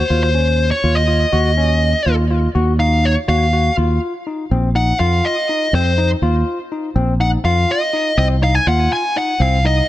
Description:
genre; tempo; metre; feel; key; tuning
progressive instrumental, band music in an uneven meter; 245 BPM (eighths); 5/8; straight; Eb dorian; A4 = 440 Hz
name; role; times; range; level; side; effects
fuzz lead guitar; melody; 0.0-9.9 s; C5 to Ab5; -18 LUFS; left 1 dB; distortion, tape echo
barky tine electric piano; arpeggios; 0.0-9.8 s; C4 to Gb4; -22 LUFS; left 3 dB; none
fingered electric bass; bass; 0.1-9.8 s; Bb1 to F2; -15 LUFS; right 1 dB; none
room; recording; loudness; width
light reverb; none; -14 LUFS; side -14 dB against mid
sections
0.0-3.8 A section; 3.8-9.9 B section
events
lead electric guitar solo 0.0-3.8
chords
0.1 Dbmaj9/Eb; 1.3 Gb5/Eb; 2.6 Ebmadd9; 3.8 Ebsus2; 5.0 F5; 6.2 Ebsus2; 7.4 F5

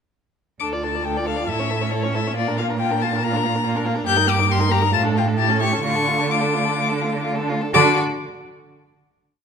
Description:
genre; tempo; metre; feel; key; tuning
quick classical-period movement for string quartet; 124-145 BPM; 4/4; rubato; D minor; A4 = 440 Hz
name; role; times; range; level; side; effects
rich violin; melody; 0.6-8.0 s; C#5 to G6; -22 LUFS; left 8 dB; none
warm violin; second line; 0.6-8.0 s; F4 to D5; -25 LUFS; left 3 dB; none
warm viola; accompaniment; 0.6-8.0 s; A3 to F4; -26 LUFS; right 2 dB; none
rich cello; bass; 0.6-8.0 s; D2 to D3; -23 LUFS; right 5 dB; none
room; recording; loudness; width
wet recital hall reverb, RT60 1.5 s; minimal, uncompressed stereo recording; -18 LUFS; side -6 dB against mid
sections
0.6-7.7 A section; 7.7-9.4 final chord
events
slowing down 3.2-7.7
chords
0.6 Dm; 1.5 A; 2.4 Bb; 4.1 Eb/G; 4.9 Dm/A; 5.4 A7; 5.8 Dm; 7.7 N.C.

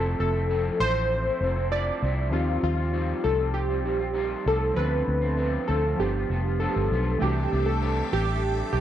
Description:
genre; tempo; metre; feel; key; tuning
indie pop, bedroom pop; 98 BPM; 4/4; straight; C major; A4 = 441 Hz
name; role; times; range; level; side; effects
warm analog keys; melody; 0.0-8.8 s; F4 to D5; -27 LUFS; right 1 dB; wide subtle chorus, slapback echo
electric guitar through a small old amp; accompaniment; 0.0-8.8 s; G2 to G4; -33 LUFS; left 3 dB; analog chorus, vibrato effect
warm analog keys; accompaniment; 0.0-8.8 s; E3 to A4; -33 LUFS; right 2 dB; chorus, cassette tape
vintage muted fingered electric bass; bass; 0.0-8.8 s; F1 to Eb2; -27 LUFS; equal; none
phased string machine; sustained chords; 7.2-8.8 s; A4 to D6; -38 LUFS; left 2 dB; ensemble chorus, phaser
room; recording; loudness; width
light reverb; dry, close 1970s-style studio recording; -23 LUFS; side -11 dB against mid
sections
0.0-7.2 A section; 7.2-8.8 B section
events
none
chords
0.0 Fmaj7; 2.3 Eb69; 4.8 Dm7; 6.0 G7; 7.2 C69

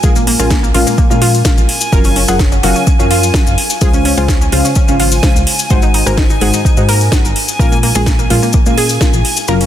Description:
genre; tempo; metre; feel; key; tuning
progressive house; 127 BPM; 4/4; straight; unclear; A4 = 440 Hz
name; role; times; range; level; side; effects
wide unison pluck; arpeggios; 0.0-9.7 s; Bb3 to C5; -19 LUFS; right 1 dB; sidechain pumping, dub echo
deep mellow chord stab; stabs; 0.0-9.7 s; Ab2 to Ab5; -16 LUFS; left 2 dB; chorus, vintage 12-bit sampler grit, sidechain pumping, dub echo
plucky analog bass; bass; 0.0-9.7 s; Gb1 to Bb2; -16 LUFS; equal; sidechain pumping
electronic kick drum; drums; 0.0-9.1 s; none; -12 LUFS; equal; overdrive
cabasa; percussion; 0.0-9.7 s; none; -21 LUFS; left 6 dB; none
backwards swelling texture; texture; 0.0-9.7 s; Ab5; -23 LUFS; right 2 dB; built-in reverb, sidechain pumping
house drum kit; drums; 0.3-9.7 s; hi-hat, snare drum; -18 LUFS; right 1 dB; overdrive, sidechain pumping on cymbals, sidechain pumping on hats
room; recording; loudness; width
digital ambience; dense, heavily limited modern master; -9 LUFS; side -11 dB against mid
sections
0.0-9.7 A section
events
kick drops out 9.5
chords
0.0 Bbm7; 1.9 Gbmaj7; 3.8 Dbmaj7; 5.7 Ab7; 7.6 Bbm7

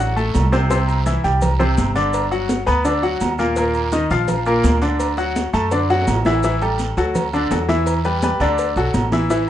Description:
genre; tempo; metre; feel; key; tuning
latin, salsa; 168 BPM; 4/4; straight; unclear; A4 = 440 Hz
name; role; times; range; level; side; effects
bright baby grand piano; accompaniment; 0.0-9.4 s; Bb2 to B5; -19 LUFS; left 1 dB; none
upright bass; bass; 0.0-9.5 s; G1 to F#2; -21 LUFS; equal; none
congas; percussion; 0.2-9.5 s; none; -25 LUFS; equal; none
maracas; percussion; 0.2-9.5 s; none; -39 LUFS; left 4 dB; none
guiro; percussion; 0.3-9.5 s; none; -37 LUFS; right 8 dB; none
timbales and agogo bells; percussion; 0.3-9.5 s; none; -28 LUFS; right 6 dB; none
cowbell; percussion; 0.7-9.5 s; none; -30 LUFS; left 4 dB; none
room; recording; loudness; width
wet studio ambience, RT60 0.5 s; rough home demo mix, nothing above 10.6 kHz; -16 LUFS; side -11 dB against mid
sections
0.0-6.4 A section; 6.4-9.5 B section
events
drum fill 0.0-0.7, 5.9-6.4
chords
0.0 D7 (rootless); 0.7 C; 2.1 Gmaj7; 3.6 Ebsus2; 5.0 D; 6.4 A5; 7.2 D; 7.9 Em7; 8.6 D

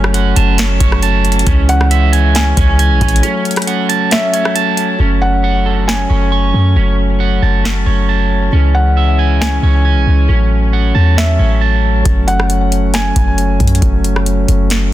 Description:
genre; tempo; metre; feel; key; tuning
hip hop, atmospheric cloud-rap; 136 BPM; 4/4; half-time; F# minor; A4 = 440 Hz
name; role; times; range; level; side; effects
chamber organ, principal; sustained chords; 0.0-14.9 s; E3 to C#4; -18 LUFS; left 1 dB; sidechain pumping
electric guitar at the edge of break-up; arpeggios; 0.0-12.1 s; C#4 to C#6; -18 LUFS; right 8 dB; low-pass filter, ping-pong delay
clean 808-style bass; bass; 0.0-14.9 s; F#1 to F#2; -12 LUFS; equal; none
booming analog drum machine; drums; 0.0-14.8 s; hi-hat, kick drum, rim click, snare drum; -16 LUFS; equal; none
felt-muted upright piano; melody; 1.7-13.8 s; E5 to G#5; -20 LUFS; left 1 dB; low-pass filter, ping-pong delay
room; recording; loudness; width
digital ambience; dense, heavily limited modern master; -10 LUFS; side -14 dB against mid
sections
0.0-5.0 A section; 5.0-12.1 B section; 12.1-14.9 C section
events
break 3.2-5.0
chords
0.0 F#m; 1.5 C#m; 3.2 F#m; 8.5 C#m; 10.3 A6; 12.1 F#m

